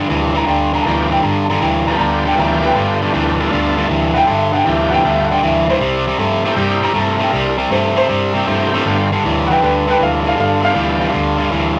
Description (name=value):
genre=electric blues shuffle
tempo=158 BPM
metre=4/4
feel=swing 68% on 8ths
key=G mixolydian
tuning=A4 = 442 Hz
part: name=crunchy overdriven guitar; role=riff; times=0.0-11.8 s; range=G2 to A3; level=-18 LUFS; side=equal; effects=none
part: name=vintage muted fingered electric bass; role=bass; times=0.0-11.8 s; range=G1 to G2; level=-25 LUFS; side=equal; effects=none
part: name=warm upright piano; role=second line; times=0.4-11.7 s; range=A4 to Bb5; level=-20 LUFS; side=equal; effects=none
part: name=bright tonewheel organ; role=accompaniment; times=0.9-11.1 s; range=A3 to Bb4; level=-25 LUFS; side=equal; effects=overdrive, chorus vibrato, slow rotary speaker
room=wet small room reverb, RT60 0.5 s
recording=none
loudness=-15 LUFS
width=mono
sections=0.0-11.8 A section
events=upright piano solo 0.0-11.8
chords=0.0 G9; 5.8 C9; 8.9 G9